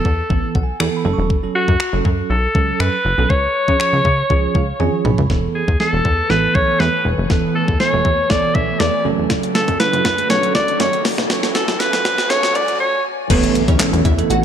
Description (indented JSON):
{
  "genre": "dance-pop",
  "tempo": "120 BPM",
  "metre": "4/4",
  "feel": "straight",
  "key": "unclear",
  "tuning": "A4 = 440 Hz",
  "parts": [
    { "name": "edgy alto saxophone", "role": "melody", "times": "0.0-13.0 s", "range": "F#4 to E5", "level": "-18 LUFS", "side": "left 1 dB", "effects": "digital delay" },
    { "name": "bell-like tine electric piano", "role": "accompaniment", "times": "0.0-14.4 s", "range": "E3 to C#6", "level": "-23 LUFS", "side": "right 8 dB", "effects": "wide subtle chorus, sidechain pumping" },
    { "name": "plucky analog bass", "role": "bass", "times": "0.1-14.4 s", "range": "E1 to C#3", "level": "-21 LUFS", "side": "left 1 dB", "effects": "sidechain pumping" },
    { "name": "clean 12-bit digital drum machine", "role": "drums", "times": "0.1-14.4 s", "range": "crash cymbal, finger snaps, handclaps, hi-hat, kick drum, snare drum, toms", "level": "-20 LUFS", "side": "left 1 dB", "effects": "gated reverb" },
    { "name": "glassy FM pad", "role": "sustained chords", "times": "5.3-14.4 s", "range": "B2 to G#5", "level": "-26 LUFS", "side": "equal", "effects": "ensemble chorus, built-in reverb, sidechain pumping" },
    { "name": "riser and impact", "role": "sound effects", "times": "7.0-14.4 s", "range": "none", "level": "-27 LUFS", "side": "left 1 dB", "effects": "none" },
    { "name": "glassy wavetable pluck", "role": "melody", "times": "13.3-14.4 s", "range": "B3 to F#5", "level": "-20 LUFS", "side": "left 1 dB", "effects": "chorus, sidechain pumping, digital delay" }
  ],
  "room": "light reverb",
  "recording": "bright 1980s-style digital production, high-pass filter",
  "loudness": "-14 LUFS",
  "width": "side -9 dB against mid",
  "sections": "0.0-5.3 A section; 5.3-13.3 B section; 13.3-14.4 C section",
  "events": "tine electric piano fill 0.3-1.3, 4.3-5.3; drum fill 4.8-5.3, 5.3-12.8; build-up 5.3-13.3; filter sweep 5.3-13.3; riser 7.0-13.3; break 12.8-13.3; drop 13.3-14.4; impact 13.3-14.4",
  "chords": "0.0 Esus4; 1.1 F#m; 3.3 C#; 5.3 Esus4; 9.1 F#m; 13.3 Esus4"
}